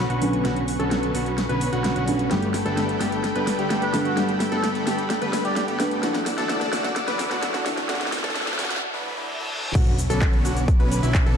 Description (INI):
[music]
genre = EDM, festival progressive house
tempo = 129 BPM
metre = 4/4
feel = straight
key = B minor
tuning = A4 = 436 Hz
[part]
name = felt-muted upright piano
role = accompaniment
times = 0.0-9.8 s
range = G2 to D4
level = -29 LUFS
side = equal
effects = sidechain pumping, ping-pong delay
[part]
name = lush unison pad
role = sustained chords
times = 0.0-11.4 s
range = C#4 to E6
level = -31 LUFS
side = equal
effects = chorus, sidechain pumping
[part]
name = bright baby grand piano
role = arpeggios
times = 0.0-11.3 s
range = E4 to B4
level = -31 LUFS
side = equal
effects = sidechain pumping, low-pass filter, ping-pong delay
[part]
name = supersaw chords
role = riff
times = 0.0-11.4 s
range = D3 to B4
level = -27 LUFS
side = equal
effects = cassette tape, sidechain pumping, low-pass filter, ping-pong delay
[part]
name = fat analog bass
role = bass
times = 0.0-11.4 s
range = G1 to G2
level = -30 LUFS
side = equal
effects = sidechain pumping
[part]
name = big-room dance drum kit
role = drums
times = 0.1-11.4 s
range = crash cymbal, handclaps, hi-hat, shaker, snare drum, toms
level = -28 LUFS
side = equal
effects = overdrive
[part]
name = riser, reverse cymbal and sub drop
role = sound effects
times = 6.2-11.4 s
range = none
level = -33 LUFS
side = equal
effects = none
[part]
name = trumpet with cup mute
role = melody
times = 3.8-5.6 s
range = F#4 to D5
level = -30 LUFS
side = equal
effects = ping-pong delay
[part]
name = electronic kick drum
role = drums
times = 9.8-11.2 s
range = none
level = -19 LUFS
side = equal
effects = overdrive
[sound]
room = moderate lush hall reverb, RT60 2.1 s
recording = dark, warm production, high-pass filter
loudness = -21 LUFS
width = side -7 dB against mid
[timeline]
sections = 0.0-9.8 A section; 9.8-11.4 B section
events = build-up 0.0-9.8; drum fill 0.0-8.8, 9.4-9.8; filter sweep on supersaw synth 0.0-9.8; filter sweep on grand piano 0.0-9.8; filter sweep 0.0-9.8; break 8.8-9.8; reverse cymbal 8.8-9.8; drop 9.8-11.4; impact 9.8-11.4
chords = 0.0 Bmadd9; 2.3 Gadd9; 6.0 Dadd9; 9.8 Bmadd9